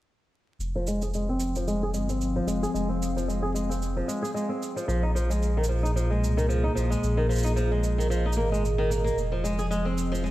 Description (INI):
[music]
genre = folktronica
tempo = 112 BPM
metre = 4/4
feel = swing 56% on 16ths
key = F minor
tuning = A4 = 439 Hz
[part]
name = warbly tape-like pad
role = sustained chords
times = 1.1-10.3 s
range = Bb2 to F5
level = -30 LUFS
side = equal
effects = chorus, built-in reverb
[part]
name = warm sub bass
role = bass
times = 0.6-10.3 s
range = F1 to C2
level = -27 LUFS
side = equal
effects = none
[part]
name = cabasa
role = drums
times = 0.6-10.3 s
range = none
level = -41 LUFS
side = right 4 dB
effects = none
[part]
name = flamenco guitar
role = arpeggios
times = 0.8-10.3 s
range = Eb3 to Ab4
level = -29 LUFS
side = equal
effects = low-pass filter, analog delay
[sound]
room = moderate lush hall reverb, RT60 2.0 s, small room reverb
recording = dreamy mix soaked in reverb, vinyl crackle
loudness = -24 LUFS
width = side -15 dB against mid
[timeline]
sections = 0.6-10.3 A section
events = filter sweep on sub bass 0.6-10.3; filter sweep on nylon-string guitar 0.6-10.3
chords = 0.6 Fm; 4.9 Bb7sus4; 9.2 Fm